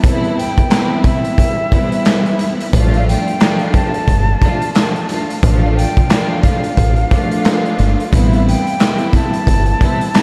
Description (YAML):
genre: hip hop, boom-bap hip-hop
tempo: 89 BPM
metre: 4/4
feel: swing 58% on 16ths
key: A minor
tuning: A4 = 440 Hz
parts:
  - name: warm studio string section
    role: accompaniment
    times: 0.0-10.2 s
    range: F3 to F4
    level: -21 LUFS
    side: equal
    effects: cassette tape, high-pass filter, low-pass filter
  - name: raw garage drum kit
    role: drums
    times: 0.0-10.2 s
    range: handclaps, hi-hat, kick drum, snare drum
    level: -17 LUFS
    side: equal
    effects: none
  - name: silver concert flute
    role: melody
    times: 0.2-10.2 s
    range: E5 to A5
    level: -24 LUFS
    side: equal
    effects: high-pass filter, low-pass filter, tape echo
  - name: deep dub fingered electric bass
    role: bass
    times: 2.7-9.7 s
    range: G1 to A1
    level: -16 LUFS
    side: equal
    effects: none
room: moderate huge ambient reverb, RT60 7.4 s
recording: dreamy mix soaked in reverb, vinyl crackle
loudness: -14 LUFS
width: mono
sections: 0.0-10.2 A section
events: break 0.0-2.7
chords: 0.0 Am7 (rootless); 2.7 Dm; 8.1 Am7